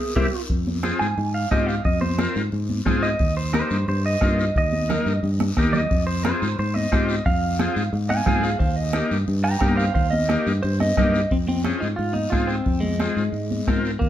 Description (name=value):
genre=latin, cumbia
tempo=178 BPM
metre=4/4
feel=straight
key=F minor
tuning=A4 = 441 Hz
part: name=breathy clarinet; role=second line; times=0.0-0.5 s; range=G4 to Ab4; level=-29 LUFS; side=right 3 dB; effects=none
part: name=clean electric guitar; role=melody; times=0.2-14.1 s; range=Ab3 to Bb5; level=-26 LUFS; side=right 1 dB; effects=spring reverb
part: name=overdriven combo organ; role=accompaniment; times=0.2-13.9 s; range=Bb3 to Bb4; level=-26 LUFS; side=left 3 dB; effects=none
part: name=fingered electric bass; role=bass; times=0.2-14.1 s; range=C2 to Ab2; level=-24 LUFS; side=equal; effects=none
part: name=bombo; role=percussion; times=0.2-14.1 s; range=none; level=-25 LUFS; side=equal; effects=none
part: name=congas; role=percussion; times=0.2-14.1 s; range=none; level=-28 LUFS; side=right 2 dB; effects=none
part: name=guiro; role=percussion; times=0.2-14.1 s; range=none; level=-39 LUFS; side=left 4 dB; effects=none
room=moderate studio reverb, RT60 0.6 s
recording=heard from further back in the room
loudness=-19 LUFS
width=side -11 dB against mid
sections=0.5-11.3 A section; 11.3-14.1 B section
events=band accent 0.0-0.5; clean electric guitar solo 0.5-11.3; drum fill 5.4-5.9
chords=0.0 C7; 0.5 Fm; 3.2 Eb; 5.9 Fm; 8.6 Eb; 11.3 Fm